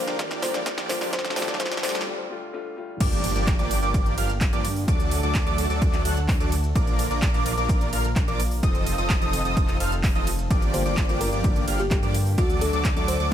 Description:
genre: EDM, festival progressive house.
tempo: 128 BPM.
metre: 4/4.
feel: straight.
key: G minor.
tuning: A4 = 439 Hz.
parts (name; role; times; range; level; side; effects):
bell-like FM electric piano; melody; 0.0-2.0, 10.7-13.3 s; F#4 to C5; -30 LUFS; left 2 dB; chorus, digital delay.
dark grand piano; accompaniment; 0.0-3.0, 10.7-13.3 s; D3 to G4; -35 LUFS; left 4 dB; sidechain pumping, digital delay.
lush unison pad; sustained chords; 0.0-13.3 s; D3 to Bb4; -36 LUFS; equal; chorus, sidechain pumping.
big supersaw lead; riff; 0.0-13.3 s; F3 to F#5; -30 LUFS; right 1 dB; sidechain pumping, digital delay.
riser and impact; sound effects; 0.0-4.9 s; none; -36 LUFS; equal; none.
big-room dance drum kit; drums; 0.1-13.3 s; crash cymbal, handclaps, hi-hat, ride cymbal, snare drum; -31 LUFS; right 1 dB; overdrive, high-pass filter on snare, high-pass filter on hats, high-pass filter on cymbals, high-pass filter on room.
electronic kick drum; drums; 0.2-12.9 s; none; -24 LUFS; equal; overdrive, high-pass filter on kick, high-pass filter on room.
wide unison lead; arpeggios; 3.0-13.3 s; D6 to F#6; -31 LUFS; equal; wide subtle chorus, sidechain pumping, digital delay.
wide detuned saw bass; bass; 3.0-13.3 s; F1 to G2; -27 LUFS; equal; chorus, tube saturation, sidechain pumping.
room: digital ambience.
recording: high-pass filter.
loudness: -21 LUFS.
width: side -10 dB against mid.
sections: 0.0-3.0 A section; 3.0-13.3 B section.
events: build-up 0.0-3.0; drum fill 0.0-2.1; riser 0.0-2.1; filter sweep 0.0-3.0; break 2.1-3.0; drop 3.0-13.3; impact 3.0-4.9.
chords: 0.0 Bb; 1.1 F7; 3.0 Gm7; 4.9 D; 6.8 Bb; 8.6 F7; 10.5 Gm7; 12.4 D.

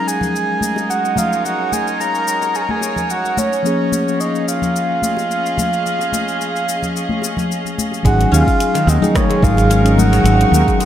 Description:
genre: organic downtempo.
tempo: 109 BPM.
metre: 4/4.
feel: swing 54% on 16ths.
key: unclear.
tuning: A4 = 440 Hz.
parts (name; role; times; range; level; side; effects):
breathy flute-like synth lead; melody; 0.0-10.9 s; Db5 to Bb5; -19 LUFS; right 2 dB; chorus, tape echo.
mellow tine electric piano; accompaniment; 0.0-10.9 s; F3 to Ab4; -21 LUFS; left 2 dB; medium stereo tremolo, sidechain pumping, dub echo.
rich chamber string section; sustained chords; 0.0-10.9 s; Ab3 to Db6; -24 LUFS; right 1 dB; sidechain pumping.
quartz singing bowl; texture; 0.0-10.9 s; Db5 to Ab5; -35 LUFS; left 5 dB; none.
afro-pop drum kit; drums; 0.1-10.9 s; cabasa, hi-hat, rim click; -26 LUFS; left 6 dB; studio reverb.
congas and bongos; percussion; 0.2-10.6 s; none; -24 LUFS; left 2 dB; dub echo.
guzheng; arpeggios; 8.0-10.9 s; Eb3 to Eb4; -21 LUFS; left 1 dB; analog delay.
mellow fretless electric bass; bass; 8.0-10.6 s; Ab1 to Eb2; -13 LUFS; equal; sidechain pumping.
electronic kick drum; drums; 8.0-10.8 s; none; -17 LUFS; equal; studio reverb.
room: moderate spring reverb, RT60 1.8 s, studio reverb.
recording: echo-heavy mix.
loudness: -14 LUFS.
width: side -11 dB against mid.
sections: 0.0-8.0 A section; 8.0-10.9 B section.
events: filter sweep on string section 0.0-8.0.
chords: 0.0 Ab7sus4; 3.6 Db6; 8.0 Ab7sus4.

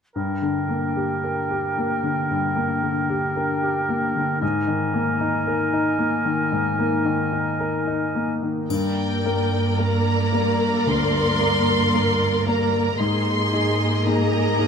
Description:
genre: cinematic, emotional film score for orchestra.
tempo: 56 BPM.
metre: 4/4.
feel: rubato.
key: unclear.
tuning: A4 = 440 Hz.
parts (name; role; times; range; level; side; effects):
mellow hollow silver concert flute; second line; 0.2-8.3 s; G5 to Ab5; -29 LUFS; right 2 dB; none.
mellow oboe; second line; 0.2-8.3 s; Bb4; -27 LUFS; right 1 dB; none.
warm clarinet; second line; 0.2-8.4 s; D4 to Eb4; -31 LUFS; left 2 dB; none.
bright grand piano; accompaniment; 0.2-14.7 s; D2 to Bb4; -23 LUFS; left 2 dB; none.
rich studio violin section; melody; 8.7-14.7 s; G5 to C6; -25 LUFS; left 1 dB; none.
warm symphonic violin section; second line; 8.7-14.7 s; Bb4 to Eb5; -28 LUFS; left 2 dB; none.
warm symphonic viola section; accompaniment; 8.7-14.7 s; Bb3 to Bb4; -25 LUFS; right 2 dB; none.
clear symphonic cello section; bass; 8.7-14.7 s; G2 to Ab2; -24 LUFS; right 2 dB; none.
triangle; percussion; 8.7-10.8 s; none; -41 LUFS; left 4 dB; none.
room: light reverb.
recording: close, detailed microphones.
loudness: -19 LUFS.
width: side -6 dB against mid.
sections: 0.2-8.7 A section; 8.7-14.7 B section.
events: none.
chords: 0.2 Gm; 4.4 Absus2; 8.7 Gm; 13.0 Absus2.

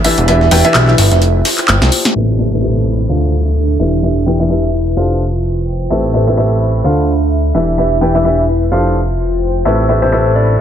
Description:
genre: piano house.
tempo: 128 BPM.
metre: 4/4.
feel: swing 57% on 16ths.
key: A minor.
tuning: A4 = 440 Hz.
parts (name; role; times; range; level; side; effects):
bright upright piano; riff; 0.0-10.6 s; A2 to G5; -15 LUFS; equal; low-pass filter, ping-pong delay.
dusty soul sampler-style drum kit; drums; 0.0-2.1 s; hi-hat, snare drum; -22 LUFS; right 1 dB; high-pass filter on snare, high-pass filter on hats, high-pass filter on room.
house drum kit; drums; 0.0-10.6 s; cabasa, handclaps, hi-hat, snare drum; -15 LUFS; left 1 dB; low-pass filter on snare, low-pass filter on hats, low-pass filter on perc.
warbly tape-like pad; texture; 0.0-10.6 s; D4 to B5; -19 LUFS; equal; chorus, built-in reverb.
fat analog bass; bass; 0.2-10.6 s; E1 to D2; -14 LUFS; equal; tube saturation.
downlifter; sound effects; 2.2-5.9 s; none; -24 LUFS; equal; none.
soft struck synth lead; melody; 10.0-10.6 s; C5 to D5; -16 LUFS; left 4 dB; chorus, ping-pong delay.
room: light reverb, digital ambience.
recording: low-pass filter.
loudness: -11 LUFS.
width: side -9 dB against mid.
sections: 0.0-2.2 A section; 2.2-10.6 B section.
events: drum fill 1.7-2.2; band accent 2.0; filter sweep on upright piano 2.2-10.6.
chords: 0.0 Em7; 1.2 Fsus2; 1.7 G9sus4; 2.2 Am9; 3.1 Dm7; 3.8 Em7; 5.0 F69; 5.9 Am9; 6.8 Dm7; 7.5 Em7; 8.7 F69; 9.7 Am9.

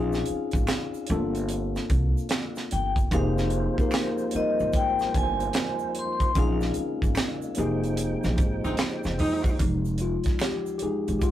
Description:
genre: R&B, neo-soul.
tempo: 74 BPM.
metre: 4/4.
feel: swing 64% on 16ths.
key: F minor.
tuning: A4 = 440 Hz.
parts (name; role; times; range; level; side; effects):
vibraphone with medium hard mallets; melody; 0.0-9.2 s; Eb5 to C6; -31 LUFS; left 2 dB; slapback echo.
tine electric piano; accompaniment; 0.0-11.3 s; F3 to Bb4; -29 LUFS; left 2 dB; none.
upright bass; bass; 0.0-11.3 s; F1 to F2; -28 LUFS; equal; none.
tight funk drum kit; drums; 0.1-11.3 s; hi-hat, kick drum, snare drum; -27 LUFS; right 1 dB; none.
tube shaker and finger snaps; percussion; 0.1-11.3 s; none; -42 LUFS; right 1 dB; none.
tonewheel organ; sustained chords; 3.1-9.6 s; Db3 to G5; -34 LUFS; right 2 dB; slow rotary speaker, overdrive, chorus vibrato.
warm horn section; stabs; 8.6-9.5 s; Ab3 to Eb4; -27 LUFS; right 2 dB; none.
room: light reverb.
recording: rough rehearsal-room recording.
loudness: -23 LUFS.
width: side -12 dB against mid.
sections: 0.0-9.6 A section; 9.6-11.3 B section.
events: band accent 6.4-9.6; tine electric piano solo 9.6-11.3.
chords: 0.0 Bbm9; 1.1 Gm9; 3.1 Fm9; 6.4 Bbm9; 7.6 Fm9.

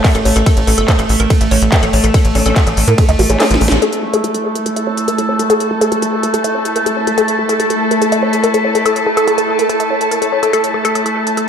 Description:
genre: psychedelic trance.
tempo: 143 BPM.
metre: 4/4.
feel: straight.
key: unclear.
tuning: A4 = 439 Hz.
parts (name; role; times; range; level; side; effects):
overtone-sweeping drone; sustained chords; 0.0-11.5 s; A3; -17 LUFS; right 1 dB; chorus, built-in reverb, sidechain pumping.
woody wave-folded pluck; riff; 0.0-11.5 s; G4 to A5; -17 LUFS; moving between left 5 dB and right 4 dB; chorus, auto-pan, sidechain pumping, diffuse ambient delay.
electronic kick drum; drums; 0.0-3.1 s; none; -13 LUFS; equal; none.
techno drum kit; drums; 0.0-11.5 s; handclaps, hi-hat, ride cymbal, snare drum; -20 LUFS; equal; overdrive.
tight sequencer bass; bass; 0.1-3.8 s; G1 to A2; -14 LUFS; equal; none.
formant-sweep wobble bass; second line; 1.7-3.5 s; A3 to C#4; -26 LUFS; right 3 dB; none.
muted studio string section; texture; 3.8-11.5 s; E4 to A5; -21 LUFS; left 2 dB; sidechain pumping.
room: moderate plate reverb, RT60 1.5 s.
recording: dreamy mix soaked in reverb.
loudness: -11 LUFS.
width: side -7 dB against mid.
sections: 0.0-3.8 A section; 3.8-11.5 B section.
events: drop 0.0-3.8; kick drops out 3.4-3.8; drum fill 3.4-3.8; band accent 3.7; filter sweep on synth arpeggio sound 3.8-11.5.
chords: 0.0 A5.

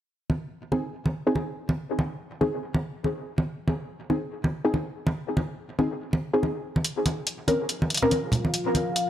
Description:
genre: deep dubstep.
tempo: 142 BPM.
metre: 4/4.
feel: swing 59% on 16ths, half-time.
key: unclear.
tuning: A4 = 445 Hz.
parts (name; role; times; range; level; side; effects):
congas; percussion; 0.3-8.8 s; none; -27 LUFS; right 1 dB; none.
filtered dub chord stab; stabs; 0.7-8.1 s; C4 to Bb4; -27 LUFS; left 1 dB; chorus, dub echo.
deep dark ambient pad; sustained chords; 8.0-9.1 s; F4 to F5; -31 LUFS; left 2 dB; chorus, built-in reverb.
electronic hi-hat; drums; 6.8-9.1 s; none; -28 LUFS; equal; none.
room: moderate echo chamber reverb, RT60 1.3 s.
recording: dry, gritty hardware recording.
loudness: -25 LUFS.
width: side -11 dB against mid.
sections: 0.1-9.1 A section.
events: filter sweep on synth stab 0.1-9.1.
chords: 0.1 Cm; 6.8 Bbmadd9.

